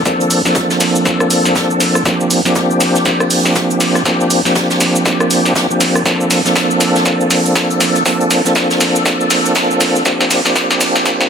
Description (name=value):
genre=deep house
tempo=120 BPM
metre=4/4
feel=swing 60% on 16ths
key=unclear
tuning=A4 = 440 Hz
part: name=bright tonewheel organ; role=stabs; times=0.0-11.3 s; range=F3 to A4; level=-13 LUFS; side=equal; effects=chorus vibrato, slow rotary speaker, sidechain pumping, low-pass filter, dub echo
part: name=electronic kick drum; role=drums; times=0.1-11.2 s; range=none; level=-22 LUFS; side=left 1 dB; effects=overdrive, high-pass filter on kick
part: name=punchy analog drum machine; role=drums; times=0.1-11.3 s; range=hi-hat, rim click, shaker, snare drum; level=-15 LUFS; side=equal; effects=high-pass filter on snare, high-pass filter on perc, high-pass filter on hats
part: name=soft brush drum kit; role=drums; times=0.1-11.2 s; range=hi-hat, snare drum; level=-22 LUFS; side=right 1 dB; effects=sidechain pumping on hats, high-pass filter on hats, soft clipping on snare, high-pass filter on snare, high-pass filter on room
room=moderate plate reverb, RT60 2.1 s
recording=dense, heavily limited modern master, high-pass filter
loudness=-11 LUFS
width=side -7 dB against mid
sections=0.0-11.3 A section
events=build-up 0.0-11.3; drum fill 0.0-11.3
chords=0.0 Bbmaj9/F; 2.1 Bb69/F; 6.1 Bbmaj9/F; 10.1 Bb69/F